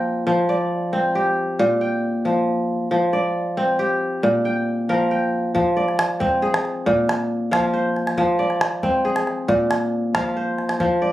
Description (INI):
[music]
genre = west african traditional, West African string and xylophone music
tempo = 91 BPM (dotted quarters)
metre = 12/8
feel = straight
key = F dorian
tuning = A4 = 440 Hz
[part]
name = kora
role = arpeggios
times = 0.0-11.1 s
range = Bb2 to G5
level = -19 LUFS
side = equal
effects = none
[part]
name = calabash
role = percussion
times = 5.6-10.9 s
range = none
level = -24 LUFS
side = right 1 dB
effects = none
[sound]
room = moderate studio reverb, RT60 0.6 s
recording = recorded on a phone in the room, studio ambience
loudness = -18 LUFS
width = side -14 dB against mid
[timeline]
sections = 0.0-5.5 A section; 5.5-11.1 A section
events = none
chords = 0.3 F5; 1.6 Bb5; 2.9 F5; 4.2 Bb5; 5.5 Fm; 6.9 Bb5; 8.2 Fm; 9.5 Bb5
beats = | 0.27 0.93 1.59 2.25 | 2.91 3.57 4.23 4.89 | 5.55 6.21 6.86 7.52 | 8.18 8.83 9.49 10.14 | 10.80